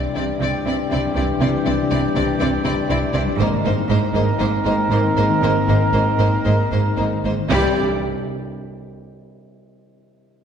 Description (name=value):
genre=cinematic, heroic adventure film score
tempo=118 BPM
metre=4/4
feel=uneven beats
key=unclear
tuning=A4 = 442 Hz
part: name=warm French horn section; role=sustained chords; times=0.0-7.7 s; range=Eb3 to D4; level=-26 LUFS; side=left 4 dB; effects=none
part: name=concert harp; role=arpeggios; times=0.0-9.7 s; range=Ab2 to Bb5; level=-26 LUFS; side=left 4 dB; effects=none
part: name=warm trumpet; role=stabs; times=0.0-7.7 s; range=G4 to Bb4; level=-25 LUFS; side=right 2 dB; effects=none
part: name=warm symphonic violin section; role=second line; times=0.1-7.8 s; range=Eb4 to E4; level=-29 LUFS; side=left 2 dB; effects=none
part: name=rich symphonic violin section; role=melody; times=0.2-7.8 s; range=C5 to D5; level=-29 LUFS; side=left 4 dB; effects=none
part: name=clear symphonic viola section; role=accompaniment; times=0.2-7.8 s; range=G3 to C4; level=-28 LUFS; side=right 1 dB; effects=none
part: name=rich studio double bass section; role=bass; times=0.2-7.8 s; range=Ab1 to C2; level=-23 LUFS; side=right 2 dB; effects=none
part: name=rich symphonic cello section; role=bass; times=0.2-7.8 s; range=Ab2 to C3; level=-24 LUFS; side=right 3 dB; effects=none
part: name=timpani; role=percussion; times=7.5-7.8 s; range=C3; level=-28 LUFS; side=right 1 dB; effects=none
room=wet scoring stage reverb, RT60 1.7 s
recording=heard from further back in the room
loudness=-16 LUFS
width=side -8 dB against mid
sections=0.0-7.5 A section; 7.5-9.6 B section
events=slowing down 2.4-7.5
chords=0.0 Cadd9; 3.4 Abadd9; 7.5 Cadd9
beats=0.41 0.91 | 1.41 1.91 2.40 2.90 | 3.40 3.89 4.39 4.90 | 5.41 5.92 6.45 6.97 | 7.51 8.04 8.57 9.10